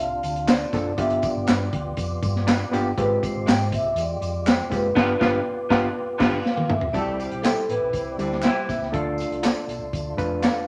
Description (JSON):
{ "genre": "uptempo 1960s-style soul", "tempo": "121 BPM", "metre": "4/4", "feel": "straight", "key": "C major", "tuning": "A4 = 440 Hz", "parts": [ { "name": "vibraphone with medium mallets", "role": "melody", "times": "0.0-10.7 s", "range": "A4 to F5", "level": "-30 LUFS", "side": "equal", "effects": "none" }, { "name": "percussive tonewheel organ", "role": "sustained chords", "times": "0.0-10.7 s", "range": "C3 to G4", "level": "-37 LUFS", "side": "equal", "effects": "slow rotary speaker, overdrive, chorus vibrato" }, { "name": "hollow-body short-scale fingered electric bass", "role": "bass", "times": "0.0-10.5 s", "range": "F#1 to Ab2", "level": "-33 LUFS", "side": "equal", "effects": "none" }, { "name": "crunchy breakbeat drum kit", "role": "drums", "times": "0.2-10.6 s", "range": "crash cymbal, hi-hat, kick drum, snare drum, toms", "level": "-26 LUFS", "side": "equal", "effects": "none" }, { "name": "tambourine and handclaps", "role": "percussion", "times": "0.2-10.5 s", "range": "none", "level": "-38 LUFS", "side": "equal", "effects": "none" }, { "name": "electric guitar through a small old amp", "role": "stabs", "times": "0.5-10.6 s", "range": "Ab3 to D5", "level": "-32 LUFS", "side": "equal", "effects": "tremolo" }, { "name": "overdriven reed electric piano", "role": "accompaniment", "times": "0.7-10.7 s", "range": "G3 to B4", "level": "-29 LUFS", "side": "equal", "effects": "none" }, { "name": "mellow saxophone section", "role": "second line", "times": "5.0-8.8 s", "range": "D3 to A4", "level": "-34 LUFS", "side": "equal", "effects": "none" } ], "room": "moderate studio reverb, RT60 0.9 s", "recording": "none", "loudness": "-23 LUFS", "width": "mono", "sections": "0.0-6.9 A section; 6.9-10.7 B section", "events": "band accent 5.0-6.9; drum fill 6.5-6.9", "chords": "0.0 Dm7; 1.0 G7; 3.0 Fmadd9/Ab; 5.0 G7; 6.9 C; 8.9 Dm" }